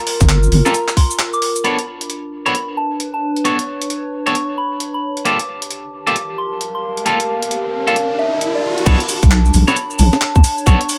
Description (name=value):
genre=UK garage, two-step garage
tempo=133 BPM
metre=4/4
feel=swing 62% on 16ths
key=unclear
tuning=A4 = 440 Hz
part: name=soft synth bell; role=melody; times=0.0-10.9 s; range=D5 to D6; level=-25 LUFS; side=equal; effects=chorus, phaser, dub echo
part: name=warbly tape-like pad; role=texture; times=0.0-11.0 s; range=D4 to A5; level=-26 LUFS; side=equal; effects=chorus, built-in reverb, sidechain pumping
part: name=breakbeat sampler-style drum kit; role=drums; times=0.1-11.0 s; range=cabasa, crash cymbal, handclaps, hi-hat, snare drum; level=-23 LUFS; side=equal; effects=none
part: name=deep soft wobble bass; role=bass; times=0.2-0.6, 8.9-10.8 s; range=G1 to E2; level=-14 LUFS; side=equal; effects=chorus
part: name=electronic kick drum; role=drums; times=0.2-1.1, 8.9-10.8 s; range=none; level=-14 LUFS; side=equal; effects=overdrive
part: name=electric guitar at the edge of break-up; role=stabs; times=0.7-10.8 s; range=G3 to C#5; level=-22 LUFS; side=equal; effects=digital delay
part: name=riser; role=sound effects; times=6.8-8.9 s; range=none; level=-28 LUFS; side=equal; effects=none
room=moderate small room ambience, RT60 0.5 s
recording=none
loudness=-17 LUFS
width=mono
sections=0.0-1.6 A section; 1.6-8.9 B section; 8.9-11.0 C section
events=band accent 1.2; riser 6.8-8.9; drop 8.9-11.0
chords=0.0 Gm9; 1.6 Bm9; 5.3 Gm9; 8.9 Bm9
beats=0.29 0.74 1.19 | 1.65 2.10 2.55 3.00 | 3.45 3.90 4.35 4.80 | 5.25 5.71 6.16 6.61 | 7.06 7.51 7.96 8.41 | 8.86 9.31 9.77 10.22 | 10.67